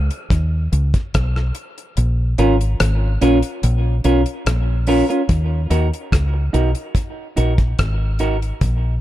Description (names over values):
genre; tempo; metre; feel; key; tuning
dub reggae; 72 BPM; 4/4; straight; Eb minor; A4 = 445 Hz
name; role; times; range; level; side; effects
deep dub fingered electric bass; bass; 0.0-9.0 s; Ab1 to D#2; -17 LUFS; equal; none
damped 70s drum kit; drums; 0.1-8.8 s; hi-hat, kick drum, rim click; -21 LUFS; equal; none
semi-hollow electric guitar; accompaniment; 2.4-8.4 s; Db4 to Bb4; -20 LUFS; right 1 dB; dub echo
room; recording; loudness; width
small room ambience; dark, warm production; -16 LUFS; side -14 dB against mid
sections
0.0-5.3 A section; 5.3-9.0 B section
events
break 0.0-2.0; kick muted 2.0-5.3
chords
0.0 Badd9; 2.0 Bbm; 5.3 Ebm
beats
0.31 1.14 | 1.97 2.80 3.63 4.46 | 5.29 6.12 6.95 7.79 | 8.62